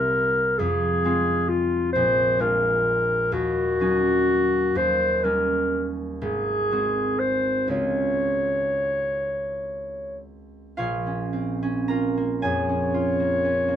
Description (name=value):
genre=classical, romantic duo for clarinet and harp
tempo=36-44 BPM (dotted quarters)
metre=6/8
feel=rubato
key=Db major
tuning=A4 = 440 Hz
part: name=warm clarinet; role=melody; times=0.0-13.8 s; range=F4 to Db5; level=-22 LUFS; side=left 1 dB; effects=none
part: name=concert harp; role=accompaniment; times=0.0-13.8 s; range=Ab1 to Bb5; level=-26 LUFS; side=right 1 dB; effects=none
room=moderate studio ambience, RT60 0.5 s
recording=minimal, uncompressed stereo recording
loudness=-21 LUFS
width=side -9 dB against mid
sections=0.0-10.8 A section; 10.8-13.8 B section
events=none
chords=0.0 C7; 0.6 Fm; 2.0 Bb7; 3.3 Ebm7; 4.8 Eb7; 6.2 Ab7; 7.7 Db; 10.8 Bbm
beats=0.59 | 1.95 3.33 | 4.76 6.21 | 7.70 9.22 | 10.78 12.41